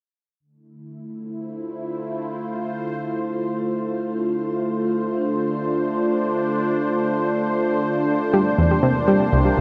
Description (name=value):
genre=ambient, sequencer-driven space music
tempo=free time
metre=none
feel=none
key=D minor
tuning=A4 = 440 Hz
part: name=sweeping resonant pad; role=sustained chords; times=0.4-9.6 s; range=C3 to C5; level=-24 LUFS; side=equal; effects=chorus, shimmer reverb
part: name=analog pluck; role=riff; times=8.3-9.6 s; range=C2 to G3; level=-19 LUFS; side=equal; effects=chorus, tape echo
room=wet cathedral reverb, RT60 5.2 s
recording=in a vast, echoing space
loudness=-22 LUFS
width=mono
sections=0.4-9.6 A section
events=fade-in on analog synth pad 0.4-9.6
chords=0.4 Dm7; 8.3 C7